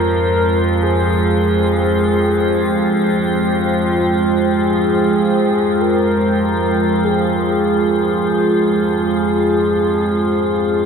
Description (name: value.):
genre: dark ambient drone.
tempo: free time.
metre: none.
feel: none.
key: F minor.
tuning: A4 = 440 Hz.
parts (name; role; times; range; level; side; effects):
mellow horn-like synth lead; melody; 0.0-10.9 s; Ab4 to Bb4; -19 LUFS; equal; chorus, diffuse ambient delay.
dark analog pad; sustained chords; 0.0-10.9 s; Ab3 to G5; -17 LUFS; equal; chorus.
overtone-sweeping drone; drone; 0.0-10.9 s; F2 to F3; -20 LUFS; equal; chorus, built-in reverb.
icy glass pad; texture; 0.0-10.9 s; F4; -24 LUFS; right 4 dB; chorus, built-in reverb.
room: wet cathedral reverb, RT60 6.5 s.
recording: in a vast, echoing space.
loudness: -14 LUFS.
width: side -6 dB against mid.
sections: 0.0-10.9 A section.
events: none.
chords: 0.0 Fmadd9.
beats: free time.